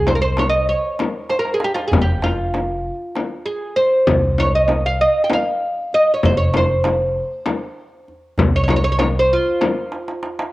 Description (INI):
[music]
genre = Turkish makam ensemble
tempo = 195 BPM (eighths)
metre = 7/8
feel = straight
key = F makam nihavent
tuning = A4 = 440 Hz
[part]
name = oud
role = melody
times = 0.0-10.1 s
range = F4 to G5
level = -18 LUFS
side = right 1 dB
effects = cassette tape
[part]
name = upright bass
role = bass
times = 0.0-9.3 s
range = F1 to C2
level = -20 LUFS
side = equal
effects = none
[part]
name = darbuka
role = percussion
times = 0.1-10.5 s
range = none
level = -24 LUFS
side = right 1 dB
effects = none
[part]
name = frame drum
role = percussion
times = 0.1-9.8 s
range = none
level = -21 LUFS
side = left 3 dB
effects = none
[sound]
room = wet spring reverb, RT60 1.4 s, small room ambience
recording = home recording on cassette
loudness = -16 LUFS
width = side -18 dB against mid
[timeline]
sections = 0.0-10.5 A section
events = drum fill 1.3-1.9, 9.9-10.5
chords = none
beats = 0.07 0.38 0.69 1.00 1.31 1.62 | 1.93 2.23 2.54 2.85 3.16 3.47 3.77 | 4.08 4.39 4.70 5.01 5.31 5.62 5.93 | 6.24 6.54 6.85 7.16 7.47 7.78 8.08 | 8.39 8.70 9.01 9.31 9.62 9.93 10.24